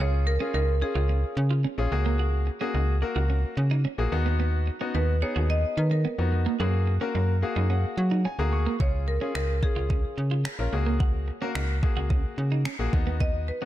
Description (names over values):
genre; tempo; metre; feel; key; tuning
dance-pop; 109 BPM; 4/4; straight; F# major; A4 = 438 Hz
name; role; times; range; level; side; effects
marimba with hard mallets; melody; 0.0-13.7 s; G#4 to D#5; -33 LUFS; right 1 dB; ping-pong delay
bright concert grand piano; accompaniment; 0.0-13.7 s; A#3 to C#6; -32 LUFS; left 4 dB; sidechain pumping
twelve-string electric guitar; riff; 0.0-13.7 s; A#3 to F#4; -35 LUFS; right 8 dB; lush chorus
slap-like FM bass; bass; 0.0-13.5 s; A#1 to F#3; -24 LUFS; equal; sidechain pumping
clean 12-bit digital drum machine; drums; 8.8-13.3 s; finger snaps, kick drum; -27 LUFS; equal; overdrive
room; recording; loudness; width
digital ambience; dark, warm production; -23 LUFS; side -14 dB against mid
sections
0.0-13.7 A section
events
grand piano fill 7.1-8.8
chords
0.0 C#; 1.9 F#add9/C#; 4.1 B/D#; 6.6 F#add9; 8.8 C#; 10.7 F#add9/C#; 12.9 B/D#